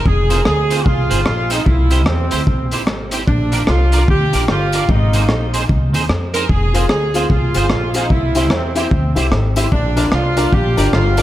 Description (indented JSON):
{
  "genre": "ska",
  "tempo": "149 BPM",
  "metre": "4/4",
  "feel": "swing 62% on 8ths",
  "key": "F dorian",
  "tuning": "A4 = 440 Hz",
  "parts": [
    { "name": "warm horn section", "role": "melody", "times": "0.0-11.2 s", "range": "C4 to Bb4", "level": "-20 LUFS", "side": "right 1 dB", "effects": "dub echo" },
    { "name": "upright bass", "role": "bass", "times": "0.1-11.2 s", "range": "F1 to F2", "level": "-17 LUFS", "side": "equal", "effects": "none" },
    { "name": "crunchy breakbeat drum kit", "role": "drums", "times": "0.1-11.2 s", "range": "hi-hat, kick drum, rim click", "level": "-18 LUFS", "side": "equal", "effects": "none" },
    { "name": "clean electric guitar", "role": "accompaniment", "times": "0.3-11.2 s", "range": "C4 to D5", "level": "-24 LUFS", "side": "right 4 dB", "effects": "ensemble chorus, dub echo" },
    { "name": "tambourine", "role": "percussion", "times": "0.3-11.2 s", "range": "none", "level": "-34 LUFS", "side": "left 9 dB", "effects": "none" },
    { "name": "clear upright piano", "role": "stabs", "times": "6.7-11.2 s", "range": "D4 to F5", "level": "-22 LUFS", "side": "left 4 dB", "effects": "none" }
  ],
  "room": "studio reverb",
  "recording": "none",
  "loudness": "-13 LUFS",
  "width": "side -14 dB against mid",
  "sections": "0.0-11.2 A section",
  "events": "none",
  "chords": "0.1 Fm; 1.7 C; 3.3 Bb; 4.9 Ab; 6.5 Fm; 8.1 C; 9.7 Bb",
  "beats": "| 0.06 0.46 0.86 1.27 | 1.67 2.07 2.47 2.88 | 3.28 3.68 4.08 4.49 | 4.89 5.29 5.70 6.10 | 6.50 6.90 7.30 7.71 | 8.11 8.51 8.91 9.32 | 9.72 10.12 10.52 10.92"
}